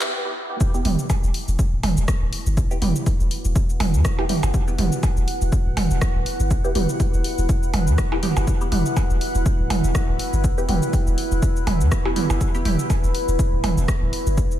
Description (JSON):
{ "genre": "minimal techno", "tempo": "122 BPM", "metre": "4/4", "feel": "swing 56% on 16ths", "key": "E minor", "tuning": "A4 = 440 Hz", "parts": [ { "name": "filtered dub chord stab", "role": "stabs", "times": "0.0-12.8 s", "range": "B3 to G4", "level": "-30 LUFS", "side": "equal", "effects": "phaser, lush chorus, diffuse ambient delay" }, { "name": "house drum kit", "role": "drums", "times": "0.0-14.6 s", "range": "handclaps, hi-hat, rim click, shaker", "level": "-31 LUFS", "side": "left 2 dB", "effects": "high-pass filter on snare, studio reverb, high-pass filter on perc, high-pass filter on hats" }, { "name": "deep dark ambient pad", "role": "texture", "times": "0.5-14.6 s", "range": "E4 to F#5", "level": "-28 LUFS", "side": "equal", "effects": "chorus, built-in reverb, sidechain pumping" }, { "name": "electronic kick drum", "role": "drums", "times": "0.6-14.5 s", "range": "none", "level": "-22 LUFS", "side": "equal", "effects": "studio reverb" }, { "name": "punchy sub bass", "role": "bass", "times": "0.8-14.5 s", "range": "D1 to E2", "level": "-21 LUFS", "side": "equal", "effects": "sidechain pumping" }, { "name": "electronic toms and percussion blips", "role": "percussion", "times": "0.9-13.7 s", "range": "none", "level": "-26 LUFS", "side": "right 3 dB", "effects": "studio reverb, diffuse ambient delay" } ], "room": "light reverb, digital ambience", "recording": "high-pass filter", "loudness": "-18 LUFS", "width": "side -12 dB against mid", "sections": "0.6-14.6 A section", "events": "break 0.1-0.6; drop 0.6-14.6", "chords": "0.0 Em" }